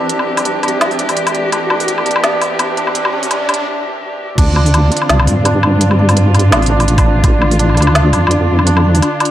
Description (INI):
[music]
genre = half-time drum and bass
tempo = 168 BPM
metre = 4/4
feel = swing 56% on 16ths, half-time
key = D minor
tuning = A4 = 440 Hz
[part]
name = dark studio cello section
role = sustained chords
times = 0.0-9.3 s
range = D3 to G4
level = -18 LUFS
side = left 1 dB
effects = sidechain pumping
[part]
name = santur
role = arpeggios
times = 0.0-9.3 s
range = D4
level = -19 LUFS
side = right 2 dB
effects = dub echo
[part]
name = riser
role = sound effects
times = 0.4-3.7 s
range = none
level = -26 LUFS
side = right 1 dB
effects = none
[part]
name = metallic inharmonic drone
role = texture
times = 0.0-3.7 s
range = E3 to E5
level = -29 LUFS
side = right 2 dB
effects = chorus, built-in reverb
[part]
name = organic electronic drum kit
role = drums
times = 0.1-9.3 s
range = crash cymbal, hi-hat, snare drum, woodblock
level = -17 LUFS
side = left 1 dB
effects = none
[part]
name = deep soft wobble bass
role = bass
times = 4.4-9.0 s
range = A1 to G2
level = -11 LUFS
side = equal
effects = chorus, tube saturation
[part]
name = electronic kick drum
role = drums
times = 4.4-4.5, 7.0-7.3 s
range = none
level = -12 LUFS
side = equal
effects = none
[sound]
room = moderate echo chamber reverb, RT60 2.2 s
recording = echo-heavy mix, high-pass filter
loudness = -10 LUFS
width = side -12 dB against mid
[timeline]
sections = 0.0-4.4 A section; 4.4-9.3 B section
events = build-up 0.0-4.4; riser 0.4-3.7; break 3.7-4.4; drop 4.4-9.3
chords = 0.0 C; 4.4 Dm7